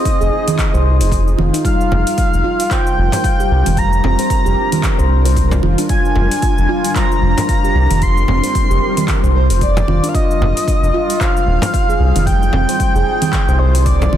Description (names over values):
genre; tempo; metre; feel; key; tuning
organic downtempo; 113 BPM; 4/4; swing 58% on 16ths; unclear; A4 = 440 Hz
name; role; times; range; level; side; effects
breathy flute-like synth lead; melody; 0.0-14.2 s; C5 to C6; -20 LUFS; equal; analog chorus, ping-pong delay
granular cloud pad; sustained chords; 0.0-14.2 s; G3 to Bb4; -23 LUFS; equal; built-in reverb, sidechain pumping
handpan; arpeggios; 0.0-14.2 s; C4 to F5; -21 LUFS; right 2 dB; ping-pong delay
bronze singing bowl; texture; 0.0-14.2 s; G3; -31 LUFS; left 5 dB; none
deep house drum kit; drums; 0.1-14.2 s; cabasa, congas, handclaps, hi-hat; -22 LUFS; right 3 dB; overdrive, studio reverb
electronic kick drum; drums; 0.1-14.0 s; none; -18 LUFS; equal; overdrive, studio reverb
round analog bass; bass; 0.2-14.2 s; Eb1 to C2; -14 LUFS; equal; sidechain pumping
frame drum; percussion; 1.9-14.1 s; none; -21 LUFS; left 1 dB; none
room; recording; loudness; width
little or no reverb; dense, heavily limited modern master; -12 LUFS; side -11 dB against mid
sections
0.0-14.2 A section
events
none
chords
0.0 Fm7; 1.6 Gm7/F; 10.1 F7sus2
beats
0.06 0.59 1.12 | 1.65 2.18 2.71 3.24 | 3.77 4.30 4.83 5.37 | 5.90 6.43 6.96 7.49 | 8.02 8.55 9.08 9.61 | 10.14 10.68 11.21 11.74 | 12.27 12.80 13.33 13.86